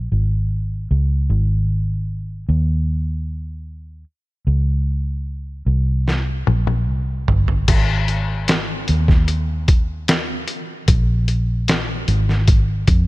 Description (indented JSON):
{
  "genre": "pop ballad",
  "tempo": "75 BPM",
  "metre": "4/4",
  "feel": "straight",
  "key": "Ab major",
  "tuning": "A4 = 440 Hz",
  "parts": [
    { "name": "vintage muted fingered electric bass", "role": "bass", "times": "0.0-13.1 s", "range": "G1 to F2", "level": "-18 LUFS", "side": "equal", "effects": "none" },
    { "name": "lo-fi sampler-style drum kit", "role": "drums", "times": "6.1-13.1 s", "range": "crash cymbal, hi-hat, kick drum, snare drum, toms", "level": "-18 LUFS", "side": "equal", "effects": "none" }
  ],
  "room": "little or no reverb",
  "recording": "none",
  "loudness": "-17 LUFS",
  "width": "side -19 dB against mid",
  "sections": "0.0-7.7 A section; 7.7-13.1 B section",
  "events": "drum fill 6.1-7.7",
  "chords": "none",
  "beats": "0.51 | 1.30 2.09 2.88 3.67 | 4.47 5.26 6.07 6.88 | 7.69 8.49 9.29 10.09 | 10.89 11.69 12.48"
}